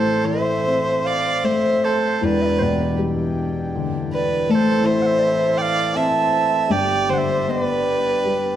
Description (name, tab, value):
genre	celtic folk, Celtic slow air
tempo	75-85 BPM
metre	3/4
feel	rubato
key	A minor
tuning	A4 = 439 Hz
part	rich fiddle	melody	0.0-8.6 s	A4 to E5	-21 LUFS	equal	none
part	bright wooden flute	second line	0.0-8.3 s	C5 to A5	-23 LUFS	right 6 dB	none
part	felt-muted upright piano	accompaniment	0.0-8.6 s	E1 to C4	-22 LUFS	left 3 dB	none
part	hand-pumped harmonium	sustained chords	0.0-8.6 s	E3 to D5	-28 LUFS	equal	none
room	moderate recital hall reverb, RT60 1.8 s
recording	dark, warm production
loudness	-17 LUFS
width	side -11 dB against mid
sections	0.0-8.6 A section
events	none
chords	0.0 Am; 2.2 Em7; 4.5 Am; 6.7 G